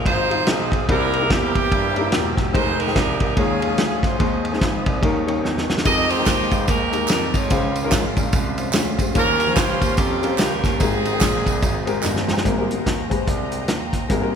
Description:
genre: uptempo gospel.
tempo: 145 BPM.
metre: 4/4.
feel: swing 61% on 8ths.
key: Ab major.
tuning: A4 = 440 Hz.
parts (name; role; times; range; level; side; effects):
bright saxophone section; melody; 0.0-12.0 s; Bb3 to Eb5; -22 LUFS; right 1 dB; none.
warm upright piano; accompaniment; 0.0-14.4 s; Ab2 to Ab5; -26 LUFS; left 5 dB; none.
mellow tonewheel organ; sustained chords; 0.0-14.4 s; G3 to E6; -29 LUFS; right 2 dB; slow rotary speaker, chorus vibrato.
warm grand piano; bass; 0.0-14.4 s; E1 to G2; -26 LUFS; right 1 dB; none.
warm soul drum kit; drums; 0.1-14.2 s; hi-hat, kick drum, ride cymbal, snare drum; -22 LUFS; equal; none.
tambourine and handclaps; percussion; 5.9-12.4 s; none; -30 LUFS; right 5 dB; none.
rich studio string section; sustained chords; 12.5-14.4 s; C5 to Bb5; -33 LUFS; equal; none.
room: moderate church reverb, RT60 3.4 s.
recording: recorded in a church or concert hall.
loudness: -17 LUFS.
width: side -7 dB against mid.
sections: 0.0-12.4 A section; 12.4-14.4 B section.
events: drum fill 5.4-5.9, 12.0-12.4; upright piano fill 11.8-12.4.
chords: 0.0 Dbmaj9#11 (rootless); 0.9 C7; 2.5 Fm11; 3.4 Eb9sus4; 4.2 Ab/Eb; 5.0 Eb7; 5.9 Fm11; 7.5 Dbmaj7; 9.2 Eb13; 10.8 Abmaj9.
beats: 0.06 0.47 | 0.89 1.30 1.72 2.13 | 2.54 2.96 3.37 3.79 | 4.20 4.61 5.03 5.44 | 5.85 6.26 6.68 7.09 | 7.50 7.92 8.33 8.74 | 9.15 9.56 9.98 10.39 | 10.80 11.21 11.62 12.04 | 12.45 12.86 13.28 13.69 | 14.10.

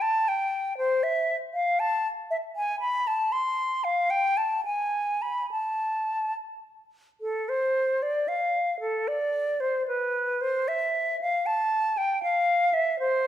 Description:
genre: classical, baroque-style fantasia for unaccompanied flute.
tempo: 68-80 BPM (dotted quarters).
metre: 6/8.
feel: rubato.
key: A minor.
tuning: A4 = 439 Hz.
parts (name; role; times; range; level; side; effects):
silver concert flute; solo; 0.0-13.3 s; A4 to C6; -24 LUFS; equal; none.
room: wet recital hall reverb, RT60 1.4 s.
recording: minimal, uncompressed stereo recording.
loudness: -24 LUFS.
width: side -11 dB against mid.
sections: 0.0-7.2 A section; 7.2-13.3 B section.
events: none.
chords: none.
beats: 0.02 | 0.78 1.55 | 2.31 3.07 | 3.85 4.65 | 5.51 6.36 | 7.21 8.03 | 8.82 9.61 | 10.41 11.21 | 11.98 12.74.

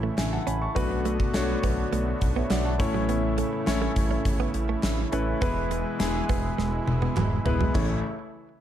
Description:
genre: 1980s-style pop.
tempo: 103 BPM.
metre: 4/4.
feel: straight.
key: A major.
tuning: A4 = 440 Hz.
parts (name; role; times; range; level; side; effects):
clear concert grand piano; accompaniment; 0.0-8.0 s; A1 to C#6; -28 LUFS; left 3 dB; none.
brassy analog pad; sustained chords; 0.0-8.0 s; B2 to F#4; -34 LUFS; right 4 dB; chorus.
direct-recorded clean electric guitar; riff; 0.0-7.9 s; E3 to C#4; -34 LUFS; right 10 dB; analog chorus, digital delay.
smooth gliding synth bass; bass; 0.0-8.0 s; E1 to B1; -29 LUFS; equal; none.
gated 80s drum kit; drums; 0.2-7.9 s; crash cymbal, hi-hat, kick drum, snare drum, tambourine, toms; -27 LUFS; equal; none.
group handclap; percussion; 0.2-8.0 s; none; -47 LUFS; right 6 dB; none.
room: light reverb.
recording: dark, warm production.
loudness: -23 LUFS.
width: side -10 dB against mid.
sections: 0.0-7.8 A section.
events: drum fill 6.6-7.8.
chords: 0.0 A; 0.8 Bm7; 2.8 A; 5.4 E; 7.8 A.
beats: 0.18 | 0.76 1.34 1.93 2.51 | 3.09 3.67 4.25 4.84 | 5.42 6.00 6.58 7.17 | 7.75.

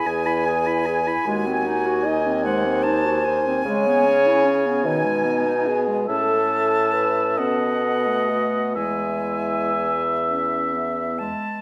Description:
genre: classical, slow romantic movement for wind quintet.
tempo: 38-51 BPM (dotted quarters).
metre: 6/8.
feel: rubato.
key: E major.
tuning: A4 = 441 Hz.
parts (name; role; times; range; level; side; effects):
silver concert flute; melody; 0.0-11.6 s; E5 to A5; -30 LUFS; equal; none.
warm oboe; second line; 0.0-11.3 s; D#5 to B5; -28 LUFS; equal; none.
clear French horn; accompaniment; 0.0-11.2 s; D#4 to D#5; -27 LUFS; equal; none.
mellow clarinet; accompaniment; 0.0-11.6 s; D#3 to G#4; -31 LUFS; equal; none.
warm bassoon; bass; 0.1-11.3 s; D#2 to C#3; -26 LUFS; equal; none.
room: wet scoring stage reverb, RT60 1.7 s.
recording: none.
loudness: -21 LUFS.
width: mono.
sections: 0.0-11.6 A section.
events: none.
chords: 0.0 E; 1.3 G#7/D#; 3.7 C#m7; 4.9 G#m/B; 6.1 A; 7.4 B7; 8.8 E.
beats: 0.06 | 1.26 2.45 | 3.66 4.86 | 6.09 7.39 | 8.76 10.27.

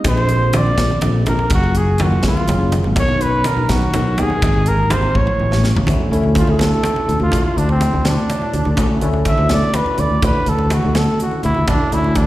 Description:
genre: electric jazz fusion.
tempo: 82 BPM (dotted quarters).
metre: 6/8.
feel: straight.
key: D major from 5.9 s.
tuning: A4 = 440 Hz.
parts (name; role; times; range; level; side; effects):
bright tine electric piano; accompaniment; 0.0-12.3 s; F3 to C#5; -23 LUFS; left 1 dB; medium stereo tremolo, lush chorus, slapback echo.
sustaining fretless electric bass; bass; 0.0-12.2 s; Gb1 to D#2; -17 LUFS; equal; ensemble chorus.
crisp fusion drum kit; drums; 0.0-12.3 s; hi-hat, kick drum, snare drum, toms; -21 LUFS; equal; none.
congas; percussion; 0.0-12.3 s; none; -23 LUFS; right 1 dB; slapback echo.
breathy trumpet; melody; 0.1-12.3 s; C4 to E5; -20 LUFS; equal; slapback echo.
room: small room ambience.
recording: live gig heard through the venue's PA, recital hall reverb.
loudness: -14 LUFS.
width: side -15 dB against mid.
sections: 0.0-5.9 A section; 5.9-12.3 B section.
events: drum fill 5.2-5.9, 11.2-11.7; trumpet solo 5.9-12.3.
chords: 0.1 Bbmaj9; 1.5 Gbmaj9; 3.0 Bmaj9; 4.4 Abmaj9; 5.2 A7; 5.9 Dmaj9.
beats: | 0.06 0.79 | 1.51 2.24 | 2.97 3.70 | 4.43 5.15 | 5.88 6.61 | 7.33 8.06 | 8.79 9.51 | 10.24 10.96 | 11.69.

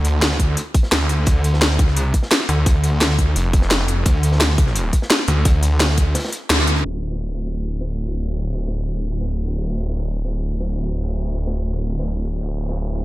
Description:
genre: dark technical drum and bass.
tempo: 172 BPM.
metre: 4/4.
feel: straight.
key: D minor.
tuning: A4 = 440 Hz.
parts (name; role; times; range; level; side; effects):
snarling distorted saw bass; bass; 0.0-13.0 s; D1 to D2; -19 LUFS; equal; distortion, tube saturation, sidechain pumping.
drum and bass drum kit; drums; 0.0-13.0 s; hi-hat, snare drum; -20 LUFS; equal; none.
crunchy breakbeat drum kit; drums; 0.1-13.0 s; hi-hat, snare drum; -32 LUFS; equal; none.
electronic kick drum; drums; 0.4-6.0 s; none; -16 LUFS; equal; none.
room: light reverb, studio reverb.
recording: low-pass filter.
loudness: -17 LUFS.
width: side -17 dB against mid.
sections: 0.0-6.8 A section; 6.8-13.0 B section.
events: break 6.2-6.8; band accent 6.5; filter sweep 6.8-13.0.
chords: none.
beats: 0.22 0.57 0.92 | 1.27 1.62 1.97 2.31 | 2.66 3.01 3.36 3.71 | 4.06 4.41 4.76 5.11 | 5.45 5.80 6.15 6.50 | 6.85 7.20 7.55 7.90 | 8.24 8.59 8.94 9.29 | 9.64 9.99 10.34 10.69 | 11.04 11.38 11.73 12.08 | 12.43 12.78.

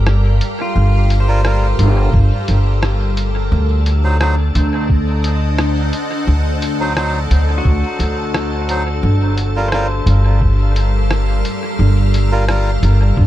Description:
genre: ambient dub.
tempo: 87 BPM.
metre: 4/4.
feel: straight.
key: G minor.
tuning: A4 = 436 Hz.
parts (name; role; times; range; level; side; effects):
soft additive organ-like pad; sustained chords; 0.0-13.3 s; G3 to F#5; -22 LUFS; left 1 dB; ensemble chorus, built-in reverb.
upright bass; bass; 0.0-13.3 s; G1 to D2; -14 LUFS; equal; none.
lo-fi sampler-style drum kit; drums; 0.1-13.0 s; hi-hat, rim click; -25 LUFS; equal; dub echo.
pedal steel guitar; arpeggios; 0.6-12.7 s; F4 to C5; -27 LUFS; left 2 dB; analog delay.
melodica; stabs; 1.3-12.7 s; F#3 to C5; -25 LUFS; right 1 dB; vintage 12-bit sampler grit, dub echo.
electronic kick drum; drums; 2.1-13.3 s; none; -15 LUFS; equal; none.
room: little or no reverb.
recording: echo-heavy mix.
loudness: -13 LUFS.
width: side -14 dB against mid.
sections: 0.0-13.3 A section.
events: none.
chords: 0.0 Gm7; 3.5 D7b9; 9.0 Gm7.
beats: 0.07 | 0.76 1.45 2.14 2.83 | 3.52 4.21 4.89 5.58 | 6.27 6.96 7.65 8.34 | 9.03 9.72 10.41 11.10 | 11.79 12.48 13.17.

